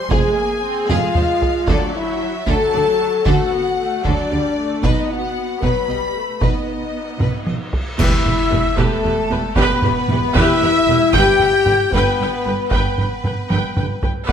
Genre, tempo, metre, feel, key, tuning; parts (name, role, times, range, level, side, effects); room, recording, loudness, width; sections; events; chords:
cinematic, epic orchestral film score; 76 BPM (dotted quarters); 6/8; straight; E minor from 8.0 s; A4 = 440 Hz
warm symphonic violin section; second line; 0.0-14.0 s; A4 to B5; -26 LUFS; left 3 dB
rich symphonic viola section; accompaniment; 0.0-14.3 s; F#3 to G5; -24 LUFS; right 2 dB
dark French horn section; sustained chords; 0.0-14.3 s; A3 to C5; -20 LUFS; left 4 dB
rich studio violin section; melody; 0.1-14.3 s; Ab4 to G5; -29 LUFS; left 2 dB
rich symphonic cello section; bass; 0.1-14.3 s; E2 to D3; -25 LUFS; right 4 dB
warm chamber double bass section; bass; 0.1-14.3 s; E1 to D2; -24 LUFS; right 5 dB
solo taiko drums; drums; 0.1-14.3 s; -22 LUFS; equal
cymbal swell, clash cymbals and concert bass drum; percussion; 4.8-9.0 s; -25 LUFS; right 1 dB
hollow concert flute; second line; 8.0-14.3 s; A5 to G6; -24 LUFS; left 1 dB
moderate scoring stage reverb, RT60 1.5 s; -15 LUFS; side -8 dB against mid
0.0-8.0 A section; 8.0-14.3 B section
drum fill 0.9-1.7, 7.2-8.0, 13.5-14.3; band accent 8.0-8.5
0.0 Fm; 1.7 D; 4.8 B; 8.0 Em; 11.1 G